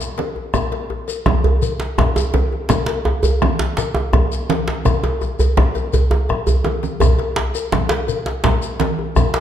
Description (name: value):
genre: west african traditional, West African drum ensemble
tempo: 111 BPM (dotted quarters)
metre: 12/8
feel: straight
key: none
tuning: none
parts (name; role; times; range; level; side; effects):
- djembe; percussion; 0.0-9.4 s; none; -25 LUFS; left 4 dB; none
- shekere; percussion; 0.0-9.3 s; none; -28 LUFS; left 6 dB; none
- congas; percussion; 0.2-9.3 s; none; -23 LUFS; right 6 dB; none
- cowbell; percussion; 0.2-9.4 s; none; -26 LUFS; left 8 dB; none
- bombo; percussion; 0.5-9.3 s; none; -22 LUFS; left 1 dB; none
- djembe; percussion; 1.3-9.4 s; none; -19 LUFS; right 2 dB; none
room: moderate recital hall reverb, RT60 1.5 s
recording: dark, warm production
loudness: -16 LUFS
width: side -10 dB against mid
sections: 0.0-9.4 A section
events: drum fill 6.3-7.0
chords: none